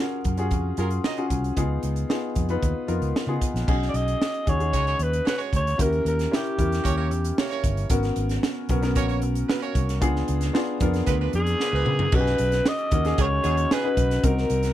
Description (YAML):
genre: polished 1980s jazz-funk pop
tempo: 114 BPM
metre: 4/4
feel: straight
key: unclear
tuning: A4 = 440 Hz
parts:
  - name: warm concert grand piano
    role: accompaniment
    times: 0.0-14.7 s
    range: B3 to B4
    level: -28 LUFS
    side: left 2 dB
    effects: wide subtle chorus
  - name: fingered electric bass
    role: bass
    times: 0.2-14.7 s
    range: G1 to C#3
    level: -25 LUFS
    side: equal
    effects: none
  - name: crisp fusion drum kit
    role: drums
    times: 0.2-14.7 s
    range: crash cymbal, hi-hat, kick drum, snare drum, toms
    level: -26 LUFS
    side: right 1 dB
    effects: none
  - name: warm horn section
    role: second line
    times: 0.8-1.3, 4.7-13.9 s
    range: D#3 to D#5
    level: -31 LUFS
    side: right 9 dB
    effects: none
  - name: growling alto saxophone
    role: melody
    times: 3.9-7.7, 11.4-14.7 s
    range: G4 to D#5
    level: -26 LUFS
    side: equal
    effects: slapback echo
room: little or no reverb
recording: none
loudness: -21 LUFS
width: side -12 dB against mid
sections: 0.0-3.7 A section; 3.7-12.1 B section; 12.1-14.7 C section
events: drum fill 11.6-12.1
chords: 0.0 D#m11; 1.6 C#9; 3.7 B69; 5.8 D#7b9; 7.9 G#m11; 10.0 C#7b9; 12.1 B6